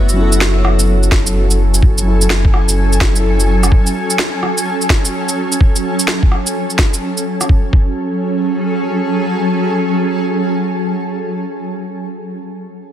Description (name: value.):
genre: future garage.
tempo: 127 BPM.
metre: 4/4.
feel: swing 63% on 16ths.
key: F# minor.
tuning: A4 = 438 Hz.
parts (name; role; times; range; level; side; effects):
granular cloud pad; sustained chords; 0.0-12.0 s; F#3 to G#5; -18 LUFS; right 1 dB; built-in reverb, sidechain pumping.
soft dub sub bass; bass; 0.0-3.7 s; F#1; -14 LUFS; equal; sidechain pumping.
muted felt-like synth keys; accompaniment; 0.1-4.0 s; F#3 to A4; -20 LUFS; left 2 dB; chorus, sidechain pumping, analog delay.
electronic shaker, snare drum and rim click; drums; 0.1-7.5 s; none; -18 LUFS; right 1 dB; none.
electronic kick drum; drums; 1.1-7.9 s; none; -12 LUFS; equal; none.
room: light reverb.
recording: dense, heavily limited modern master.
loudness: -12 LUFS.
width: side -10 dB against mid.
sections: 0.0-7.5 A section; 7.5-11.3 B section.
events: none.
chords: 0.0 F#m7; 7.5 F#m.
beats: 0.41 0.88 1.35 | 1.82 2.30 2.77 3.24 | 3.71 4.19 4.66 5.13 | 5.60 6.08 6.55 7.02 | 7.49 7.97 8.44 8.91 | 9.38 9.86 10.33 10.80.